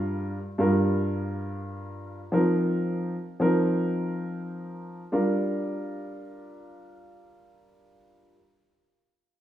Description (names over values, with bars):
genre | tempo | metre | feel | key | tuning
hip hop | 86 BPM | 4/4 | swing 54% on 16ths | G minor | A4 = 440 Hz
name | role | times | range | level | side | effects
dark concert grand piano | accompaniment | 0.0-8.3 s | G2 to Bb4 | -25 LUFS | equal | high-pass filter, low-pass filter
room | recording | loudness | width
light reverb, small room ambience | rough home demo mix | -24 LUFS | side -12 dB against mid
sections
0.0-5.1 A section; 5.1-7.9 B section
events
none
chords
0.0 Gm7; 2.3 F7sus4; 5.1 Gm7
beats
0.24 0.94 1.64 | 2.34 3.03 3.73 4.43 | 5.13 5.83 6.52 7.22